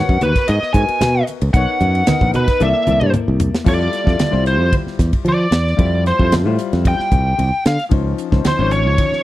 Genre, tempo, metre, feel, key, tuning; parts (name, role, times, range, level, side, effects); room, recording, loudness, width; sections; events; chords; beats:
electric jazz fusion; 113 BPM; 4/4; straight; F major from 3.7 s; A4 = 440 Hz
biting lead guitar; melody; 0.0-9.2 s; Cb5 to Ab5; -19 LUFS; equal; overdrive, slapback echo
clear baby grand piano; accompaniment; 0.0-9.2 s; F3 to Eb5; -23 LUFS; left 8 dB
modern bright fingered electric bass; bass; 0.1-9.2 s; Ab1 to F3; -17 LUFS; equal
tight funk drum kit; drums; 0.1-9.2 s; crash cymbal, hi-hat, kick drum, ride cymbal, snare drum, toms; -18 LUFS; equal
congas; percussion; 0.2-9.1 s; -24 LUFS; right 3 dB
studio ambience; dry, close 1970s-style studio recording; -13 LUFS; side -15 dB against mid
0.0-3.7 A section; 3.7-9.2 B section
drum fill 2.6-3.7; lead electric guitar solo 3.7-9.2
0.0 Abm11; 1.5 Cbmaj9; 2.6 C13; 3.7 Fmaj9; 7.9 Dbmaj9
0.48 1.01 | 1.54 2.07 2.60 3.14 | 3.67 4.20 4.73 5.26 | 5.79 6.33 6.86 7.39 | 7.92 8.46 8.99